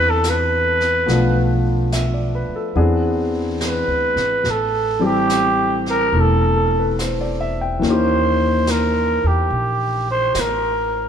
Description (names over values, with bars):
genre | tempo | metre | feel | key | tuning
jazz ballad | 71 BPM | 4/4 | swing 67% on 8ths | unclear | A4 = 440 Hz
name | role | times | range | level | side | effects
growling trumpet | melody | 0.0-11.1 s | G4 to C5 | -18 LUFS | right 1 dB | none
warm concert grand piano | accompaniment | 0.0-11.1 s | E3 to G5 | -22 LUFS | left 3 dB | none
upright bass | bass | 0.0-11.1 s | E1 to E2 | -21 LUFS | equal | none
jazz brush drum kit | drums | 0.2-11.1 s | brushed snare drum, hi-hat, snare drum | -30 LUFS | right 2 dB | none
room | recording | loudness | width
moderate plate reverb, RT60 2.7 s | heard from further back in the room | -16 LUFS | side -8 dB against mid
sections
0.0-11.1 A section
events
trumpet solo 0.0-11.1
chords
0.0 Cmaj9; 1.1 Bm7b5; 2.8 E7b13; 4.5 Am7; 7.8 Eb7b9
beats
0.24 | 1.08 1.92 2.77 3.61 | 4.45 5.30 6.14 6.98 | 7.82 8.67 9.51 10.35